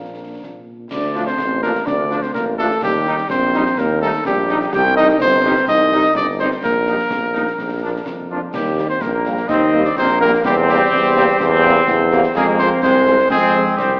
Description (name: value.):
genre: military-style march for wind band.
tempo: 126 BPM.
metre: 2/4.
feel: straight.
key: Eb major from 4.7 s.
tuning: A4 = 440 Hz.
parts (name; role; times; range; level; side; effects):
mellow cornet; melody; 0.0-14.0 s; F4 to G5; -18 LUFS; equal; none.
dark euphonium; second line; 0.0-14.0 s; F3 to G4; -20 LUFS; equal; none.
mellow French horn section; accompaniment; 0.0-13.6 s; F3 to F4; -25 LUFS; equal; none.
warm tuba; bass; 0.0-14.0 s; G1 to Bb2; -20 LUFS; equal; none.
concert snare drum, concert bass drum and clash cymbals; drums; 0.4-14.0 s; none; -30 LUFS; equal; none.
clear trombone section; sustained chords; 1.1-14.0 s; F3 to Eb4; -20 LUFS; equal; none.
room: wet scoring stage reverb, RT60 1.6 s.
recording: AM radio sound.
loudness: -13 LUFS.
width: side -32 dB against mid.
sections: 0.9-8.5 A section; 8.5-14.0 B section.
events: none.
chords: 0.0 Bb; 0.9 Dm; 2.8 Eb; 4.7 Cm; 6.6 Eb/Bb; 7.6 Bb; 8.5 Eb; 10.5 C7/E; 12.4 Fm.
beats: 0.44 | 0.92 1.39 | 1.87 2.35 | 2.82 3.30 | 3.78 4.25 | 4.73 5.21 | 5.68 6.16 | 6.64 7.11 | 7.59 8.07 | 8.54 9.02 | 9.50 9.97 | 10.45 10.93 | 11.40 11.88 | 12.36 12.84 | 13.31 13.79.